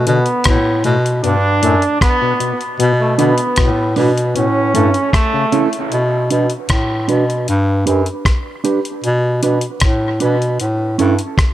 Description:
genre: dub reggae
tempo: 77 BPM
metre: 4/4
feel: straight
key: B minor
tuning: A4 = 440 Hz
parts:
  - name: bright trombone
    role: second line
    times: 0.0-5.7 s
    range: A3 to D4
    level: -18 LUFS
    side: right 2 dB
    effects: dub echo
  - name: bright bass clarinet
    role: bass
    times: 0.0-11.2 s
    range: F#2 to B2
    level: -15 LUFS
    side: equal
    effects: none
  - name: clav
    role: arpeggios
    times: 0.1-5.6 s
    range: A2 to D3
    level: -22 LUFS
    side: left 6 dB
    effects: auto-wah, dub echo
  - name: dusty soul sampler-style drum kit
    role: drums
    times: 0.1-11.5 s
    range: hi-hat, kick drum, rim click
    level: -17 LUFS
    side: equal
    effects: none
  - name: mellow electric guitar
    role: accompaniment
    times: 3.2-11.1 s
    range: C#4 to B4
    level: -19 LUFS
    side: right 4 dB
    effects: low-pass filter, dub echo
room: light reverb, digital ambience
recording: echo-heavy mix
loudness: -13 LUFS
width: side -13 dB against mid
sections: 0.0-5.9 A section; 5.9-11.5 B section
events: break 0.0-2.8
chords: 0.0 N.C.; 1.2 G; 2.8 Bm; 4.4 A; 5.9 Bm; 7.5 G; 9.0 Bm; 10.6 A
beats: 0.45 1.23 2.01 | 2.79 3.57 4.35 5.13 | 5.91 6.69 7.47 8.26 | 9.04 9.82 10.60 11.38

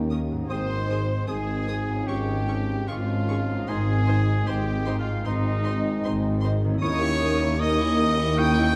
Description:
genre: classical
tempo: 76 BPM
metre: 4/4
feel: rubato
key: Ab major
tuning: A4 = 439 Hz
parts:
  - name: concert flute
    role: second line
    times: 0.0-8.8 s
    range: Eb5 to G6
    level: -38 LUFS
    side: equal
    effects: none
  - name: rich chamber violin section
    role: second line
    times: 0.0-8.8 s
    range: Eb4 to G5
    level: -41 LUFS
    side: equal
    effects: none
  - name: mellow French horn section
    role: sustained chords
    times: 0.0-8.8 s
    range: C4 to Eb4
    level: -34 LUFS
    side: equal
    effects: none
  - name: warm trombone section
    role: sustained chords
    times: 0.0-8.8 s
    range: Eb3 to Bb3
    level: -37 LUFS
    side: equal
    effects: none
  - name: concert harp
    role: arpeggios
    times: 0.0-8.8 s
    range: Ab2 to Eb5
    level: -41 LUFS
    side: equal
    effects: none
  - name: clear trumpet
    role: stabs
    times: 0.0-8.8 s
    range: Eb4 to G5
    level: -32 LUFS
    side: equal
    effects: none
  - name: dark chamber cello section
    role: bass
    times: 0.0-8.8 s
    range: Eb2 to Ab2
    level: -30 LUFS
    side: equal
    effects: none
  - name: mellow tuba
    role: bass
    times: 0.0-8.8 s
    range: Ab1 to Eb2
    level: -33 LUFS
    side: equal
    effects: none
  - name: warm studio double bass section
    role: bass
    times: 0.0-8.8 s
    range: Ab1 to Eb2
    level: -33 LUFS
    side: equal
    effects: none
  - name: rich chamber violin section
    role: melody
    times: 0.1-8.8 s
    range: C6 to Eb6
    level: -43 LUFS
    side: equal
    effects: none
  - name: rich studio viola section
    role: accompaniment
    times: 0.1-8.8 s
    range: C4 to C5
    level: -37 LUFS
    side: equal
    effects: none
  - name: clear oboe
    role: second line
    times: 0.5-8.7 s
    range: C6 to Eb6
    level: -40 LUFS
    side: equal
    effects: none
  - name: dark clarinet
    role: second line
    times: 0.5-8.7 s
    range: C4 to Fb4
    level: -39 LUFS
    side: equal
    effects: none
room: wet scoring stage reverb, RT60 2.1 s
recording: none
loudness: -24 LUFS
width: mono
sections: 0.0-8.8 A section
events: none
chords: 0.5 Ab; 2.1 Db/Ab; 3.7 Ab; 6.8 Eb7b9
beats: | 0.50 1.28 2.07 2.89 | 3.69 4.47 5.26 6.06 | 6.83 7.60 8.39

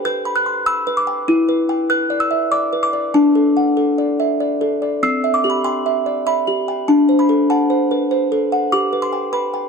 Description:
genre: classical, lullaby for music box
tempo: 98 BPM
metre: 3/4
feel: straight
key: G major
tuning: A4 = 438 Hz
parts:
  - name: music box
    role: solo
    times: 0.0-9.7 s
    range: C4 to G6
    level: -15 LUFS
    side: equal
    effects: none
room: light reverb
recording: dark, warm production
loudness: -15 LUFS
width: side -5 dB against mid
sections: 0.0-5.0 A section; 5.0-9.7 B section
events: none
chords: 0.0 G; 1.3 Em7; 3.1 D; 5.0 C; 6.9 D7; 8.7 G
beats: 0.05 0.67 | 1.28 1.90 2.52 | 3.14 3.77 4.40 | 5.02 5.64 6.26 | 6.88 7.49 8.11 | 8.72 9.33

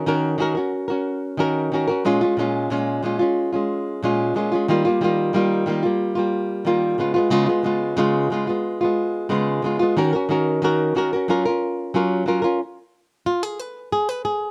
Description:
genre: indie pop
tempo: 91 BPM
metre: 4/4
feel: straight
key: unclear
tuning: A4 = 444 Hz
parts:
  - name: flamenco guitar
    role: solo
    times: 0.0-14.5 s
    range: A#2 to B4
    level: -21 LUFS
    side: equal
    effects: vibrato effect
room: little or no reverb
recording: recorded outdoors, with no room sound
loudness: -21 LUFS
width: mono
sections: 0.0-12.6 A section; 12.6-14.5 B section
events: nylon-string guitar solo 12.6-14.5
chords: 0.0 D#m7; 2.0 A#m7; 4.7 D#add9; 7.0 C#7; 10.0 D#m7; 11.3 F#maj7; 12.6 N.C.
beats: 0.07 0.73 1.39 | 2.05 2.71 3.37 4.03 | 4.68 5.34 6.00 6.66 | 7.32 7.98 8.64 9.29 | 9.95 10.61 11.27 11.93 | 12.59 13.25 13.90

